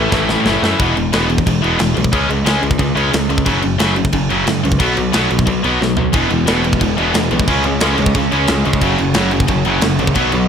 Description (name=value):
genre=punk rock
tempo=179 BPM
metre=4/4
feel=straight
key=E major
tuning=A4 = 440 Hz
part: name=distorted electric guitar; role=riff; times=0.0-10.5 s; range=E2 to C#4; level=-19 LUFS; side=right 9 dB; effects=overdrive
part: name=distorted electric guitar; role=riff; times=0.0-0.6, 6.1-10.5 s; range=E2 to C#4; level=-21 LUFS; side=right 2 dB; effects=distortion
part: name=tight distorted guitar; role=riff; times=0.0-10.5 s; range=F#2 to E4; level=-18 LUFS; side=left 12 dB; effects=distortion
part: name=modern bright picked electric bass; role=bass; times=0.0-10.5 s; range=E1 to F#2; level=-20 LUFS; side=equal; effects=none
part: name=tight metal drum kit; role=drums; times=0.1-10.4 s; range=crash cymbal, kick drum, snare drum, toms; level=-18 LUFS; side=equal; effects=none
room=little or no reverb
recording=none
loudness=-13 LUFS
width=side -7 dB against mid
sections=0.8-10.5 A section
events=drum fill 0.1-0.8, 5.8-6.1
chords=0.0 A; 0.8 E; 2.1 C#5; 3.5 F#5; 4.8 B5; 6.1 E; 7.5 C#5; 8.8 F#5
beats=0.12 0.45 | 0.79 1.12 1.46 1.79 | 2.12 2.46 2.79 3.13 | 3.46 3.80 4.13 4.47 | 4.80 5.14 5.47 5.81 | 6.14 6.48 6.81 7.14 | 7.48 7.82 8.15 8.48 | 8.82 9.15 9.49 9.83 | 10.16